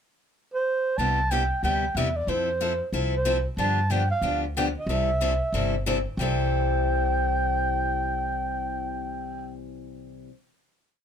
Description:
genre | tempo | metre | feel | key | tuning
acoustic string swing (jazz manouche) | 184 BPM | 4/4 | swing 61% on 8ths | C major | A4 = 438 Hz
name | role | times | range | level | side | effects
breathy clarinet | melody | 0.5-9.5 s | C5 to A5 | -27 LUFS | right 2 dB | none
picked steel-string acoustic guitar | accompaniment | 1.0-10.3 s | C3 to A4 | -28 LUFS | left 3 dB | none
upright bass | bass | 1.0-10.2 s | G1 to G2 | -28 LUFS | equal | none
room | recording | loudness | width
light reverb | none | -23 LUFS | side -8 dB against mid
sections
0.0-1.0 pickup bar; 1.0-6.2 A section; 6.2-8.8 final chord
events
none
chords
0.0 N.C.; 1.0 Cmaj7; 2.3 Fmaj7; 3.6 G7; 4.9 C6

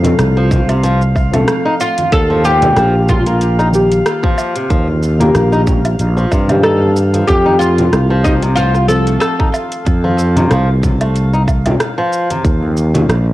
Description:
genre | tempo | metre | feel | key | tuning
organic downtempo | 93 BPM | 4/4 | swing 55% on 16ths | F mixolydian | A4 = 441 Hz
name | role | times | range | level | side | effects
deep mellow chord stab | accompaniment | 0.0-10.2 s | Eb3 to A4 | -18 LUFS | left 2 dB | chorus, sidechain pumping, cassette tape, analog delay
sustaining fretless electric bass | bass | 0.0-13.3 s | Bb1 to G2 | -13 LUFS | equal | sidechain pumping
deep house drum kit | drums | 0.0-13.2 s | hi-hat, rim click, shaker, woodblock | -21 LUFS | right 1 dB | overdrive
congas | percussion | 0.0-13.1 s | none | -21 LUFS | equal | none
drifting glass-harmonics texture | texture | 0.0-12.5 s | F5 | -29 LUFS | right 2 dB | chorus, built-in reverb, cassette tape
flamenco guitar | arpeggios | 0.4-12.4 s | C3 to Eb4 | -20 LUFS | equal | cassette tape, analog delay
electronic kick drum | drums | 0.5-12.6 s | none | -15 LUFS | equal | none
oud | melody | 1.8-9.8 s | Eb4 to A4 | -16 LUFS | equal | cassette tape, tape echo
room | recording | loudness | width
light reverb | home recording on cassette | -11 LUFS | side -16 dB against mid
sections
0.0-13.3 A section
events
none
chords
0.0 F; 2.1 Eb; 7.3 F; 12.4 Eb5

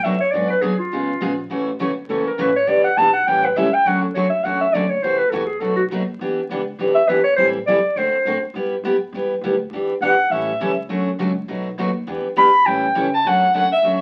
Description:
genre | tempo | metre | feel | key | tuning
acoustic string swing (jazz manouche) | 204 BPM | 4/4 | swing 57% on 8ths | D major | A4 = 443 Hz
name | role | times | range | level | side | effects
breathy clarinet | second line | 0.0-13.1 s | F4 to B5 | -19 LUFS | equal | none
picked steel-string acoustic guitar | accompaniment | 0.0-14.0 s | B2 to A4 | -24 LUFS | equal | none
upright bass | bass | 0.0-14.0 s | F#1 to C#3 | -37 LUFS | equal | none
dark violin | melody | 13.1-14.0 s | E5 to A5 | -17 LUFS | equal | none
room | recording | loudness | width
wet studio reverb, RT60 0.6 s | very old 78 rpm record, vinyl crackle | -19 LUFS | mono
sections
0.0-3.9 A section; 3.9-13.3 A section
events
clarinet solo 0.0-13.3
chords
0.3 G#m7b5; 0.9 C#7; 1.5 F#m7; 2.7 Em7; 3.3 A7; 3.9 Dmaj7; 5.0 F#m7b5; 5.6 B7; 6.2 Em7; 7.4 Am7; 8.0 D7; 8.6 G6; 9.7 Em7; 10.3 A7; 10.9 Dmaj7; 11.5 B7; 12.1 Em7; 12.7 A7; 13.3 Dmaj7

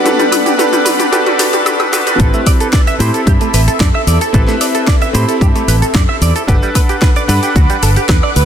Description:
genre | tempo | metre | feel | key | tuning
nu-disco, nu disco | 112 BPM | 4/4 | straight | A dorian | A4 = 440 Hz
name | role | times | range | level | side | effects
warm electric grand piano | accompaniment | 0.0-8.4 s | C4 to B5 | -17 LUFS | equal | sidechain pumping, ping-pong delay
lush unison pad | sustained chords | 0.0-8.4 s | G3 to D6 | -20 LUFS | right 1 dB | chorus, phaser, sidechain pumping
direct-recorded clean electric guitar | riff | 0.1-8.4 s | G3 to E5 | -19 LUFS | right 5 dB | analog chorus, ping-pong delay
house drum kit | drums | 0.1-8.4 s | hi-hat, shaker, snare drum, toms, woodblock | -17 LUFS | left 2 dB | overdrive, small room ambience
fingered electric bass with an envelope filter | bass | 2.2-8.4 s | G1 to A2 | -13 LUFS | equal | none
electronic kick drum | drums | 2.2-8.2 s | none | -12 LUFS | equal | overdrive, small room ambience
room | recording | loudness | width
moderate lush hall reverb, RT60 1.8 s | dense, heavily limited modern master, high-pass filter | -9 LUFS | side -9 dB against mid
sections
0.0-2.2 A section; 2.2-8.4 B section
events
build-up 0.0-2.2; drum fill 0.0-2.2; filter sweep on electric grand piano 0.0-2.2; drop 2.2-8.4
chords
0.0 Gmaj7; 2.2 Am7; 6.5 Gmaj7

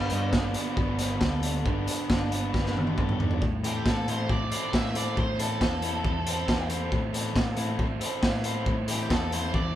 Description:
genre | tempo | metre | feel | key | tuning
indie rock | 137 BPM | 4/4 | straight | A minor | A4 = 440 Hz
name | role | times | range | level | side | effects
fuzz guitar | riff | 0.0-9.6 s | B3 to A4 | -35 LUFS | left 6 dB | distortion
raw garage guitar | riff | 0.0-9.8 s | G2 to C5 | -33 LUFS | right 5 dB | overdrive
hollow-body short-scale picked electric bass | bass | 0.0-9.8 s | G1 to A2 | -31 LUFS | equal | none
raw garage drum kit | drums | 0.1-9.6 s | hi-hat, kick drum, snare drum, toms | -28 LUFS | equal | none
octave-fuzz lead guitar | melody | 3.6-9.8 s | G4 to E5 | -33 LUFS | equal | distortion
room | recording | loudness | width
moderate large studio reverb, RT60 1.3 s | band playing live in one room | -25 LUFS | side -12 dB against mid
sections
0.0-3.4 A section; 3.4-9.8 B section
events
drum fill 2.5-3.4; lead electric guitar solo 3.4-9.8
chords
0.0 Gadd9; 3.4 Am

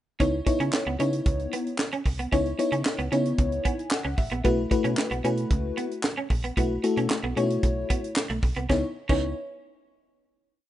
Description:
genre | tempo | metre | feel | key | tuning
early-eighties boogie funk | 113 BPM | 4/4 | straight | C# minor | A4 = 440 Hz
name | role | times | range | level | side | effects
FM electric piano with soft pad layer | accompaniment | 0.2-9.3 s | A3 to G#5 | -27 LUFS | left 2 dB | chorus
electric guitar at the edge of break-up | riff | 0.2-9.3 s | A3 to C#4 | -32 LUFS | right 4 dB | ensemble chorus
slap-like FM bass | bass | 0.2-9.3 s | A1 to C#3 | -30 LUFS | equal | none
tight funk drum kit | drums | 0.2-9.2 s | crash cymbal, handclaps, hi-hat, kick drum, snare drum | -27 LUFS | right 1 dB | none
room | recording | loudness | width
small room reverb | rough home demo mix, nothing above 10.7 kHz | -23 LUFS | side -13 dB against mid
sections
0.2-8.7 verse; 8.7-10.7 final chord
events
FM electric piano fill 3.4-4.4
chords
0.2 C#m9; 4.4 B7sus4; 8.7 C#m9

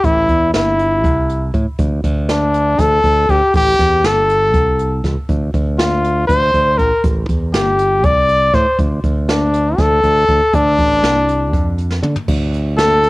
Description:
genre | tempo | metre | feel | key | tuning
progressive instrumental, band music in an uneven meter | 240 BPM (eighths) | 7/8 | straight | D minor | A4 = 439 Hz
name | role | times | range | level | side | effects
clear trumpet | melody | 0.0-13.1 s | D4 to D5 | -13 LUFS | left 1 dB | none
modern bright fingered electric bass | bass | 0.0-13.1 s | G1 to D3 | -18 LUFS | equal | none
jazz brush drum kit | drums | 0.0-13.1 s | crash cymbal, hi-hat, kick drum, snare drum, toms | -18 LUFS | right 1 dB | cassette tape
room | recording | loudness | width
light reverb, studio reverb | home recording on cassette | -12 LUFS | side -20 dB against mid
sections
0.0-12.3 A section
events
drum fill 11.9-12.3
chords
0.0 Am7; 1.8 D5; 3.5 Am7; 5.3 Dm7; 7.0 Am7; 8.8 D5; 10.5 Dm7; 12.3 D5

